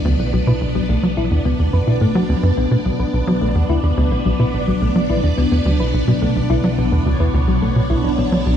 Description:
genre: ambient, sequencer-driven space music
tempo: 107 BPM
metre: 4/4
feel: straight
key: B minor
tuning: A4 = 442 Hz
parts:
  - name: string machine, full ensemble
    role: sustained chords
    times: 0.0-8.6 s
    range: B3 to D5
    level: -22 LUFS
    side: equal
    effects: phaser, ensemble chorus
  - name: analog drone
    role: bass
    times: 0.0-8.6 s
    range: B1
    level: -26 LUFS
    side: right 1 dB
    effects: none
  - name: thumb-piano-like synth pluck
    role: arpeggios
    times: 0.1-8.6 s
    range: F#3 to B4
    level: -22 LUFS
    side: left 4 dB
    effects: chorus, auto-pan, tape echo
  - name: tight sequencer bass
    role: riff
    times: 0.1-8.6 s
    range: B1 to F#3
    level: -17 LUFS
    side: right 1 dB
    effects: tape echo
room: light reverb, digital ambience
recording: none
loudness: -15 LUFS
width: side -9 dB against mid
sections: 0.0-8.6 A section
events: none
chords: 0.0 Bmadd9

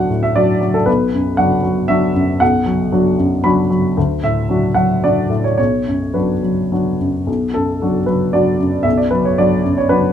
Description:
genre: neoclassical minimalist piano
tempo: 104-118 BPM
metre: 3/4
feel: rubato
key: B minor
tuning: A4 = 440 Hz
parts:
  - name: warm baby grand piano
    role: solo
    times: 0.0-10.1 s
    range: B1 to B5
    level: -13 LUFS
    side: equal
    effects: none
room: light reverb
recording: minimal, uncompressed stereo recording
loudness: -13 LUFS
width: side -9 dB against mid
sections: 0.0-7.3 A section; 7.3-10.1 A section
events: none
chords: 0.0 D; 0.9 Bm; 4.0 D; 5.6 Bm

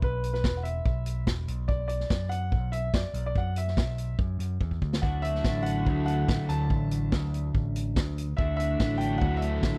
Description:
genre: indie rock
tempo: 144 BPM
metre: 4/4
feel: straight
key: unclear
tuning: A4 = 438 Hz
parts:
  - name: warm upright piano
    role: melody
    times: 0.0-9.8 s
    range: B4 to A5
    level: -36 LUFS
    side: equal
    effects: slapback echo
  - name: picked electric bass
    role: bass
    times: 0.0-9.7 s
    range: E1 to F#2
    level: -32 LUFS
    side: equal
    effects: none
  - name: vintage drum kit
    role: drums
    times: 0.0-9.7 s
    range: hi-hat, kick drum, snare drum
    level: -31 LUFS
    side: equal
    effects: none
  - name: crunchy overdriven guitar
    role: riff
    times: 5.0-9.8 s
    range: D3 to F#4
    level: -35 LUFS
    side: equal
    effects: lush chorus
  - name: electric guitar through a small old amp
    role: riff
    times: 5.0-9.8 s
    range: D3 to E4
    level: -36 LUFS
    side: equal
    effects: none
room: small room reverb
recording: dry, close 1970s-style studio recording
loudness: -28 LUFS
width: mono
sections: 0.0-9.8 A section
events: drum fill 4.6-5.0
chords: 0.0 E5; 1.5 Bm; 5.0 Dadd9

